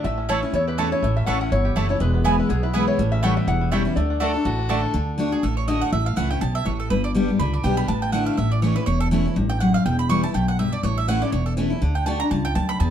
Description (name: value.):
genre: bluegrass.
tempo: 244 BPM.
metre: 4/4.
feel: swing 56% on 8ths.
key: D major.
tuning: A4 = 440 Hz.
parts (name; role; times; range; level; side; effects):
bluegrass banjo; melody; 0.0-4.9 s; G3 to G4; -31 LUFS; right 2 dB; none.
lap resonator guitar; melody; 0.0-4.7 s; G#4 to F#5; -27 LUFS; left 4 dB; none.
picked steel-string acoustic guitar; accompaniment; 0.0-12.9 s; E2 to G4; -23 LUFS; left 2 dB; none.
upright bass; bass; 0.0-12.9 s; E1 to E2; -23 LUFS; equal; none.
mandolin; stabs; 0.3-12.9 s; A3 to C#6; -27 LUFS; right 6 dB; none.
dark fiddle; second line; 4.2-4.9 s; F#4 to A4; -29 LUFS; left 4 dB; none.
room: light reverb.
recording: dark, warm production.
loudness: -19 LUFS.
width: side -9 dB against mid.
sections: 0.0-4.9 A section; 4.9-12.9 B section.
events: mandolin solo 4.9-12.9.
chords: 0.0 A; 2.0 E; 3.0 A7; 4.0 D; 5.9 A; 6.9 G; 7.9 Asus4; 8.4 A; 9.9 Em; 10.8 A; 11.8 D.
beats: | 0.04 0.29 0.53 0.78 | 1.02 1.27 1.51 1.76 | 2.00 2.25 2.49 2.74 | 2.98 3.23 3.47 3.72 | 3.96 4.21 4.45 4.70 | 4.95 5.19 5.43 5.68 | 5.93 6.17 6.42 6.66 | 6.91 7.15 7.40 7.64 | 7.89 8.13 8.38 8.62 | 8.87 9.12 9.36 9.61 | 9.85 10.10 10.35 10.59 | 10.84 11.08 11.33 11.57 | 11.82 12.06 12.31 12.56 | 12.80.